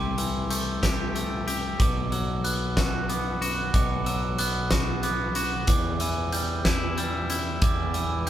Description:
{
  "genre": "post-rock",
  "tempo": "62 BPM (dotted quarters)",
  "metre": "6/8",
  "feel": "straight",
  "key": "unclear",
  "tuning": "A4 = 441 Hz",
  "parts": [
    { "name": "glockenspiel with hard plastic mallets", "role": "arpeggios", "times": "0.0-8.3 s", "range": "D6 to G6", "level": "-32 LUFS", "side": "right 4 dB", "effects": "none" },
    { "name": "twangy electric guitar", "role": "arpeggios", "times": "0.0-8.3 s", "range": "E2 to G4", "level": "-30 LUFS", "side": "left 2 dB", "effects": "none" },
    { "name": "growling fingered electric bass", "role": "bass", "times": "0.0-8.3 s", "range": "B1 to E2", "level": "-30 LUFS", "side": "equal", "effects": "overdrive" },
    { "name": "huge arena drum kit", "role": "drums", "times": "0.2-8.3 s", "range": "hi-hat, kick drum, snare drum", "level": "-26 LUFS", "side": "equal", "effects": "none" }
  ],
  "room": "moderate large studio reverb, RT60 1.2 s",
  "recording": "band playing live in one room",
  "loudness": "-23 LUFS",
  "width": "side -11 dB against mid",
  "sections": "0.0-8.3 A section",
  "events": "none",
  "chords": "0.0 C6; 1.8 Bm; 5.7 Em7"
}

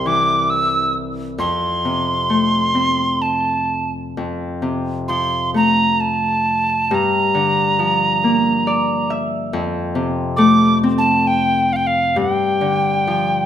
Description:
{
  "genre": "celtic folk, Celtic slow air",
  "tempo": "67 BPM",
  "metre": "3/4",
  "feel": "uneven beats, rubato",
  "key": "unclear",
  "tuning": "A4 = 440 Hz",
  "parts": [
    { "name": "wooden whistle", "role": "melody", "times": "0.0-13.5 s", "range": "F5 to E6", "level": "-17 LUFS", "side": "right 2 dB", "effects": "none" },
    { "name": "Celtic harp", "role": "accompaniment", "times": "0.0-13.5 s", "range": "C2 to E5", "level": "-19 LUFS", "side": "left 2 dB", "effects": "none" }
  ],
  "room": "moderate recital hall reverb, RT60 1.6 s",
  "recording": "minimal, uncompressed stereo recording",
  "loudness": "-15 LUFS",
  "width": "side -10 dB against mid",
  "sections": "0.0-13.5 A section",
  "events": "harp fill 8.2-9.5, 13.1-13.5",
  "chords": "0.0 C; 1.4 F; 6.9 Gm7; 9.5 F; 12.2 G7(no3)"
}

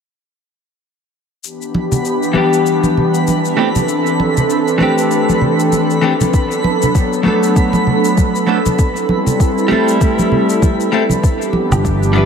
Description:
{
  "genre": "sunset chillout",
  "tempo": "98 BPM",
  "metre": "4/4",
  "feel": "swing 58% on 16ths",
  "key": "unclear",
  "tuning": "A4 = 440 Hz",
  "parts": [
    { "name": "airy breathy pad", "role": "sustained chords", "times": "1.5-12.3 s", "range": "E3 to A4", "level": "-16 LUFS", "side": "left 1 dB", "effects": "chorus, shimmer reverb" },
    { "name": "cabasa and woodblock", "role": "drums", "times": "1.4-12.1 s", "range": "none", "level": "-26 LUFS", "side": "left 6 dB", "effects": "overdrive, studio reverb" },
    { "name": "twinkling granular texture", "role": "texture", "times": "1.4-11.2 s", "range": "B4 to B5", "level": "-22 LUFS", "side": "right 1 dB", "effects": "built-in reverb, shimmer reverb" },
    { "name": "congas", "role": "percussion", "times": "1.7-12.3 s", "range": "none", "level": "-18 LUFS", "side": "right 2 dB", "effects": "none" },
    { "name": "vintage hollow-body jazz guitar", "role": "accompaniment", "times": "2.3-12.3 s", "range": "E3 to B4", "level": "-17 LUFS", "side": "moving between left 3 dB and right 6 dB", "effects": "auto-pan, low-pass filter, tape echo, shimmer reverb" },
    { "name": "electronic kick drum", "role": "drums", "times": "6.3-12.0 s", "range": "none", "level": "-14 LUFS", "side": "equal", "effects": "overdrive, studio reverb" },
    { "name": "sustaining fretless electric bass", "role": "bass", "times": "11.7-12.3 s", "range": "G1", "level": "-14 LUFS", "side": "equal", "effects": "ensemble chorus" }
  ],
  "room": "moderate plate reverb, RT60 1.6 s",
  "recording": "none",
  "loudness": "-12 LUFS",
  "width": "side -6 dB against mid",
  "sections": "1.4-11.2 A section; 11.2-12.3 B section",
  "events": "none",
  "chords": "1.4 G6; 3.6 C69; 6.3 Bm7; 8.8 Am7; 11.2 G6"
}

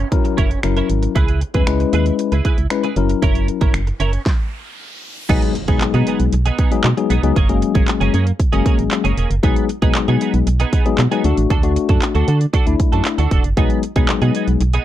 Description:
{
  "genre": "dance-pop",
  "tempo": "116 BPM",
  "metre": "4/4",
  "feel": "straight",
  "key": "B major",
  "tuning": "A4 = 440 Hz",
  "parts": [
    { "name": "twelve-string electric guitar", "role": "riff", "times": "0.0-14.8 s", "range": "A#3 to B4", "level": "-24 LUFS", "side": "right 8 dB", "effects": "ensemble chorus" },
    { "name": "organ-like FM bass", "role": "bass", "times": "0.0-14.8 s", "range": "E1 to D3", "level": "-18 LUFS", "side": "right 1 dB", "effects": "sidechain pumping" },
    { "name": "downlifter, riser and impact", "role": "sound effects", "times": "0.0-7.4 s", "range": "none", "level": "-34 LUFS", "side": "right 1 dB", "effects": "none" },
    { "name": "tine electric piano", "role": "accompaniment", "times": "0.1-14.6 s", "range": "F#3 to B4", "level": "-20 LUFS", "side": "left 8 dB", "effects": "sidechain pumping" },
    { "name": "pop drum kit", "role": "drums", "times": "0.1-14.8 s", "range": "crash cymbal, finger snaps, handclaps, hi-hat, kick drum, snare drum", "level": "-17 LUFS", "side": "right 1 dB", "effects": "none" }
  ],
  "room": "light reverb",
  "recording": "dark, warm production",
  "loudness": "-14 LUFS",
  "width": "side -12 dB against mid",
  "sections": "0.0-5.3 A section; 5.3-14.8 B section",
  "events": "riser 4.0-5.3; stop 4.3-5.3; impact 5.3-7.4",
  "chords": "0.0 F#7; 1.2 C#m7; 3.0 F#7; 5.3 B6; 7.4 F#add9; 9.4 B6; 11.2 D; 13.6 B6"
}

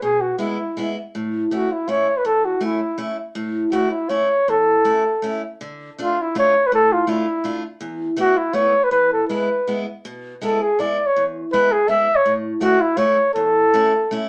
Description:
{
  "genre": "alpine folk, alpine dance band",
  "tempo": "162 BPM",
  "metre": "3/4",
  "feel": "rubato",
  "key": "A major",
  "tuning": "A4 = 440 Hz",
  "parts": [
    { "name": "mellow flugelhorn", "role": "melody", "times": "0.0-14.3 s", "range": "E4 to E5", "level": "-19 LUFS", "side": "equal", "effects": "none" },
    { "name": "picked steel-string acoustic guitar", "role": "accompaniment", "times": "0.0-14.3 s", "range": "E2 to F4", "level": "-28 LUFS", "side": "equal", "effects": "none" }
  ],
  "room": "moderate studio reverb, RT60 0.6 s",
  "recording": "none",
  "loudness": "-19 LUFS",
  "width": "mono",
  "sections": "0.0-14.3 A section",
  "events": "none",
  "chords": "0.0 E; 1.1 A; 5.6 Dm; 7.8 Esus4; 8.9 E; 12.3 A"
}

